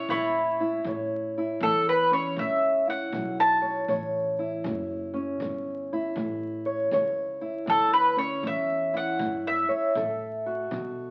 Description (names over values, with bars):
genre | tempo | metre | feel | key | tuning
acoustic country blues, solo or duo | 79 BPM | 4/4 | swing 64% on 8ths | A mixolydian | A4 = 441 Hz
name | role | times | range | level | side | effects
mandolin | melody | 0.0-10.9 s | E4 to A5 | -27 LUFS | equal | none
fingerpicked old ladder-braced acoustic guitar | accompaniment | 0.0-11.1 s | A2 to C#5 | -32 LUFS | equal | none
upright bass | bass | 0.0-11.1 s | F#1 to B2 | -43 LUFS | equal | none
kick drum | drums | 0.1-10.9 s | none | -45 LUFS | equal | none
room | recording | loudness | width
wet studio reverb, RT60 0.9 s | very old 78 rpm record, vinyl crackle | -27 LUFS | mono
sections
0.0-11.1 A section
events
mandolin solo 0.0-11.1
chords
0.0 A; 10.0 D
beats
0.09 | 0.85 1.61 2.37 3.13 | 3.89 4.64 5.40 6.16 | 6.92 7.68 8.44 9.20 | 9.96 10.71